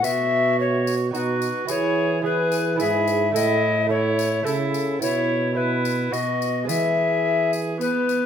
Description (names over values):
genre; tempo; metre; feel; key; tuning
classical, renaissance-style consort dance; 108 BPM; 3/4; straight; E major; A4 = 441 Hz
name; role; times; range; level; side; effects
mellow tenor recorder; melody; 0.0-8.3 s; A4 to E5; -23 LUFS; left 6 dB; none
rich viola; second line; 0.0-8.3 s; B3 to G#4; -28 LUFS; right 6 dB; none
lute; accompaniment; 0.0-8.3 s; G#2 to A4; -28 LUFS; right 7 dB; none
mellow trombone; bass; 0.0-8.1 s; G#2 to E3; -26 LUFS; right 2 dB; none
tambourine; percussion; 0.0-8.3 s; none; -35 LUFS; left 11 dB; none
room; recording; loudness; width
moderate recital hall reverb, RT60 1.4 s; close, detailed microphones; -19 LUFS; side -8 dB against mid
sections
0.0-8.3 A section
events
none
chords
0.0 Bsus4; 1.1 B; 1.7 E; 3.4 A; 5.0 Bsus4; 6.1 B; 6.7 E